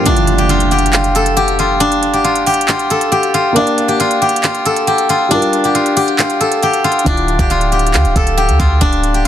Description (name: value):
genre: hip hop, trap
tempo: 137 BPM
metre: 4/4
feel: half-time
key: D minor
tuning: A4 = 440 Hz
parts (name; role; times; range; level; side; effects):
- steel-string zither; melody; 0.0-9.3 s; D4 to A4; -13 LUFS; left 1 dB; digital delay
- dark baby grand piano; accompaniment; 0.0-9.3 s; D3 to F5; -20 LUFS; left 1 dB; none
- swell and impact; sound effects; 0.0-1.8 s; none; -18 LUFS; right 1 dB; none
- trap drum kit; drums; 0.1-9.3 s; handclaps, hi-hat, kick drum; -18 LUFS; right 1 dB; none
- warm 808-style bass; bass; 7.1-9.3 s; D1 to D2; -15 LUFS; right 1 dB; none
room: light reverb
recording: dense, heavily limited modern master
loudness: -11 LUFS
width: side -10 dB against mid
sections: 0.1-9.3 A section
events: break 0.1-7.1; impact 0.1-1.8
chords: 0.1 Dmadd9; 3.6 Bb; 5.3 Gm7; 7.1 Dmadd9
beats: | 0.06 0.49 0.93 1.37 | 1.81 2.25 2.68 3.12 | 3.56 4.00 4.44 4.87 | 5.31 5.75 6.19 6.62 | 7.06 7.50 7.94 8.38 | 8.81 9.25